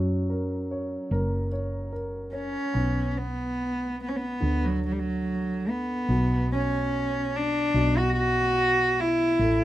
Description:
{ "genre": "folk", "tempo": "72 BPM", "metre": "4/4", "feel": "straight", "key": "B minor", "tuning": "A4 = 442 Hz", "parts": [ { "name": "warm grand piano", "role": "accompaniment", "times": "0.0-9.6 s", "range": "B2 to C#5", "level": "-32 LUFS", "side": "equal", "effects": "none" }, { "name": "woody fretless electric bass", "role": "bass", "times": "0.0-9.6 s", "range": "F#1 to F#2", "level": "-29 LUFS", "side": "equal", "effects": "none" }, { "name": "warm cello", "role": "melody", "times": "2.3-9.6 s", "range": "F#3 to F#4", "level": "-25 LUFS", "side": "equal", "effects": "none" } ], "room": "little or no reverb", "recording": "rough home demo mix", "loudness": "-24 LUFS", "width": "side -14 dB against mid", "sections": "0.0-2.7 A section; 2.7-9.6 B section", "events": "none", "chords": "0.0 F#; 2.7 Bsus2; 4.4 D; 6.1 B5", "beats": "0.29 1.11 1.92 | 2.74 3.58 4.42 5.25 | 6.09 6.92 7.74 8.57 | 9.40" }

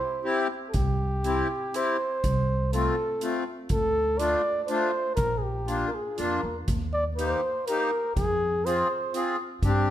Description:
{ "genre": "alpine folk, alpine dance band", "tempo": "122 BPM", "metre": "3/4", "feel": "rubato", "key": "unclear", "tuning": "A4 = 440 Hz", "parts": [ { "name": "mellow flugelhorn", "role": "melody", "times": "0.0-9.9 s", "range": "G4 to D5", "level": "-28 LUFS", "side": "right 1 dB", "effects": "none" }, { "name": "accordion", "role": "accompaniment", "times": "0.2-9.9 s", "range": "A3 to Ab4", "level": "-28 LUFS", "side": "left 2 dB", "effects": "none" }, { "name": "upright bass", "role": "bass", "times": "0.7-9.9 s", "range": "Bb1 to G2", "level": "-29 LUFS", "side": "equal", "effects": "none" }, { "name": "soft-mallet drum kit", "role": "drums", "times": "0.7-9.7 s", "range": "hi-hat, kick drum", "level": "-32 LUFS", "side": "equal", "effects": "none" } ], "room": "moderate recital hall reverb, RT60 1.6 s", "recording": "none", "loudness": "-24 LUFS", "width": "side -12 dB against mid", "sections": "0.7-9.9 A section", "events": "none", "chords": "0.0 C; 2.2 F/C; 3.7 Dm; 5.2 Bb; 6.7 Eb; 8.2 Fm", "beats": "0.24 | 0.75 1.25 1.75 | 2.24 2.73 3.22 | 3.70 4.19 4.68 | 5.18 5.67 6.17 | 6.68 7.18 7.68 | 8.17 8.65 9.14 | 9.63" }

